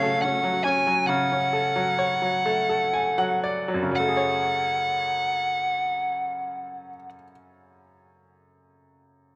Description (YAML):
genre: pop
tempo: 38-48 BPM (dotted quarters)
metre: 6/8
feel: straight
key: F# minor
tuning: A4 = 437 Hz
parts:
  - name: fuzz lead guitar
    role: melody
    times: 0.0-7.1 s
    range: E#5 to G#5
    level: -26 LUFS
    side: equal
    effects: distortion
  - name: bright baby grand piano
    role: accompaniment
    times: 0.0-9.4 s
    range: F#2 to G#5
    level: -29 LUFS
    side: equal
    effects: none
  - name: warm studio string section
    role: sustained chords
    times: 0.0-1.1 s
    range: C#3 to F#4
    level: -37 LUFS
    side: equal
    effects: none
room: light reverb, small room ambience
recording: rough home demo mix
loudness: -24 LUFS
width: mono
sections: 0.0-4.0 A section; 4.0-7.1 B section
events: slowing down 0.0-4.0; grand piano fill 2.4-4.0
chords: 0.0 F#m; 4.0 F#madd9